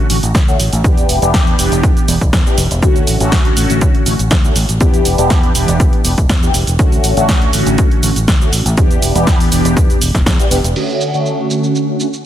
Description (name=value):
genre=filtered disco house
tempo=121 BPM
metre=4/4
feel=straight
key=D major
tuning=A4 = 441 Hz
part: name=mellow synth brass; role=accompaniment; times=0.0-12.1 s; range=D3 to G4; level=-16 LUFS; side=equal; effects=chorus, phaser, vintage 12-bit sampler grit, sidechain pumping, low-pass filter
part: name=fingered electric bass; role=bass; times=0.1-10.7 s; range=E1 to E2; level=-17 LUFS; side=equal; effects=sidechain pumping, low-pass filter
part: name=punchy analog drum machine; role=drums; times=0.1-12.2 s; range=crash cymbal, hi-hat, shaker, snare drum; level=-19 LUFS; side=right 1 dB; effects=sidechain pumping on hats, low-pass filter on hats, sidechain pumping on perc, low-pass filter on perc, low-pass filter on snare, sidechain pumping on cymbals, low-pass filter on cymbals
part: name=electronic kick drum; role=drums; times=0.3-10.4 s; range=none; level=-13 LUFS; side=equal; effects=none
room=light reverb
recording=dense, heavily limited modern master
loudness=-10 LUFS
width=side -11 dB against mid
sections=0.0-10.8 A section; 10.8-12.3 B section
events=filter sweep on analog polysynth 10.8-12.3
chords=0.0 Dmaj7; 0.8 Em7; 2.8 Dmaj7; 4.8 Em7; 6.8 Dmaj7; 8.8 Em7; 10.8 Dmaj7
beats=0.34 | 0.84 1.34 1.83 2.33 | 2.82 3.32 3.81 4.31 | 4.81 5.30 5.80 6.29 | 6.79 7.29 7.78 8.28 | 8.77 9.27 9.77 10.26 | 10.76 11.25 11.75